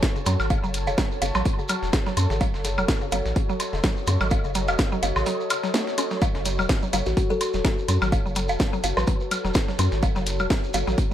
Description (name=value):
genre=minimal techno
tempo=126 BPM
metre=4/4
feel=swing 56% on 16ths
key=F# dorian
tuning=A4 = 443 Hz
part: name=dusty soul sampler-style drum kit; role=drums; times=0.0-11.1 s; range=hi-hat, snare drum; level=-37 LUFS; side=right 1 dB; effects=sidechain pumping on hats, high-pass filter on hats, high-pass filter on snare, high-pass filter on room
part: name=electronic kick drum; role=drums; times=0.0-11.1 s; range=none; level=-24 LUFS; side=equal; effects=none
part: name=house drum kit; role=drums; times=0.0-10.8 s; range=hi-hat, snare drum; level=-29 LUFS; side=equal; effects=tape echo
part: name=shekere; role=percussion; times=0.0-11.1 s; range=none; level=-36 LUFS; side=right 2 dB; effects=tape echo
part: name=warbly tape-like pad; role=texture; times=0.0-11.1 s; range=F#4 to C#6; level=-31 LUFS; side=left 1 dB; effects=chorus, built-in reverb, sidechain pumping
part: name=mallet-like synth pluck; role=riff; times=0.2-11.1 s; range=C#3 to C#4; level=-31 LUFS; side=right 1 dB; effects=chorus, sidechain pumping, dub echo
part: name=round analog bass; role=bass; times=0.3-10.9 s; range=E1 to F#2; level=-26 LUFS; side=equal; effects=sidechain pumping
part: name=woodblock and cowbell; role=percussion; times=0.3-10.8 s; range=none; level=-29 LUFS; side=right 1 dB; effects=dub echo
part: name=kalimba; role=melody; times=7.1-9.4 s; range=F#4 to B4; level=-30 LUFS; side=left 2 dB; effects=vintage 12-bit sampler grit, tape echo
room=light reverb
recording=echo-heavy mix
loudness=-21 LUFS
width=side -11 dB against mid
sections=0.0-11.1 A section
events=kick drops out 5.3-6.2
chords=0.0 F#m